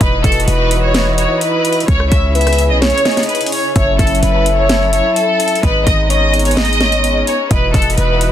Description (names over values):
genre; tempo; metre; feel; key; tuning
hip hop, trap; 128 BPM; 4/4; half-time; unclear; A4 = 440 Hz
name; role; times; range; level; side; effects
warm studio violin section; melody; 0.0-8.3 s; A4 to E5; -17 LUFS; right 1 dB; low-pass filter, digital delay
soft octave-layered synth lead; second line; 0.0-8.3 s; B4 to E5; -19 LUFS; left 5 dB; chorus, digital delay
dark studio string section; sustained chords; 0.0-8.3 s; C#3 to B4; -21 LUFS; right 2 dB; none
hard-hitting 808-style bass; bass; 0.0-8.3 s; E1 to C#2; -16 LUFS; equal; none
trap drum kit; drums; 0.0-8.3 s; hi-hat, kick drum, rim click, snare drum; -17 LUFS; equal; none
room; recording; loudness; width
digital ambience; dense, heavily limited modern master; -11 LUFS; side -11 dB against mid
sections
0.0-8.3 A section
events
none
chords
0.0 Esus2; 1.9 C#m; 3.8 F#m7; 5.6 G#m; 7.5 Esus2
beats
| 0.01 0.48 0.94 1.41 | 1.88 2.35 2.82 3.29 | 3.76 4.23 4.70 5.16 | 5.63 6.10 6.57 7.04 | 7.51 7.98